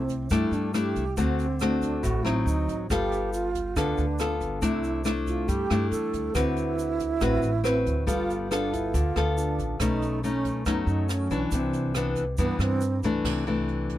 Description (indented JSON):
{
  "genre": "bossa nova",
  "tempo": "139 BPM",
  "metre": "4/4",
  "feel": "straight",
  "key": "C major",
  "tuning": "A4 = 440 Hz",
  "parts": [
    { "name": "breathy wooden-headed alto flute", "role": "second line", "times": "0.0-13.0 s", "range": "B3 to A4", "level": "-30 LUFS", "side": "right 5 dB", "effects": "none" },
    { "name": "nylon-string guitar", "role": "accompaniment", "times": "0.0-14.0 s", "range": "G2 to B4", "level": "-27 LUFS", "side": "left 3 dB", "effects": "none" },
    { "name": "upright bass", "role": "bass", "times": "0.0-14.0 s", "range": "G1 to G2", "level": "-30 LUFS", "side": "equal", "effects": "none" },
    { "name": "jazz brush drum kit", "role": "drums", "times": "0.1-14.0 s", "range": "crash cymbal, hi-hat, kick drum, rim click", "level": "-34 LUFS", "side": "right 1 dB", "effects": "none" },
    { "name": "egg shaker", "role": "percussion", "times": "0.1-13.2 s", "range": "none", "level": "-44 LUFS", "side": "right 6 dB", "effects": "none" }
  ],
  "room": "little or no reverb",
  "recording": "dry, close 1970s-style studio recording",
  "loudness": "-24 LUFS",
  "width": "side -13 dB against mid",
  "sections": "0.0-13.2 A section",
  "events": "none",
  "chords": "0.0 C69; 1.2 D7b9; 2.9 G9; 4.6 C69; 6.4 D13; 8.1 G9; 9.8 B9; 11.5 Cmaj9; 13.2 C69"
}